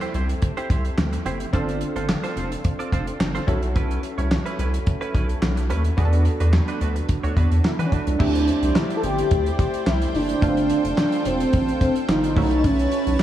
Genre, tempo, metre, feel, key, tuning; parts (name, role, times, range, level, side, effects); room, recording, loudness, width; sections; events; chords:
early-eighties boogie funk; 108 BPM; 4/4; straight; A4 = 441 Hz
funky polysynth comp; accompaniment; 0.0-13.2 s; A3 to A4; -29 LUFS; equal; chorus
direct-recorded clean electric guitar; riff; 0.0-8.1 s; A3 to D5; -32 LUFS; right 4 dB; analog chorus
damped 70s drum kit; drums; 0.0-13.2 s; crash cymbal, handclaps, hi-hat, kick drum, snare drum; -24 LUFS; equal
rubbery square bass; bass; 0.1-13.2 s; E1 to E3; -22 LUFS; equal
warm velvety synth lead; melody; 7.7-13.2 s; C4 to A4; -22 LUFS; right 1 dB; chorus, tape echo
lush unison pad; sustained chords; 8.2-13.2 s; E4 to A5; -30 LUFS; right 1 dB; chorus
moderate lush hall reverb, RT60 2.9 s; dreamy mix soaked in reverb; -19 LUFS; side -12 dB against mid
0.0-8.2 A section; 8.2-13.2 B section
0.0 D9sus4; 1.5 G9sus4; 3.5 B9sus4; 6.0 E9sus4; 8.2 D9sus4; 10.4 G9sus4; 12.4 B9sus4